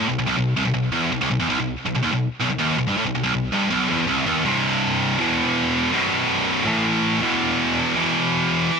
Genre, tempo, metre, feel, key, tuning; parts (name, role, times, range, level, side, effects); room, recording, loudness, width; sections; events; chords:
metal; 162 BPM; 4/4; straight; A4 = 443 Hz
scooped high-gain guitar; solo; 0.0-8.8 s; B1 to A3; -18 LUFS; equal; distortion, digital delay
light reverb; -18 LUFS; side -5 dB against mid
0.0-4.4 A section; 4.4-8.8 B section
0.0 N.C.; 4.4 C5; 5.2 E5; 5.9 B5; 6.7 A5; 7.2 E5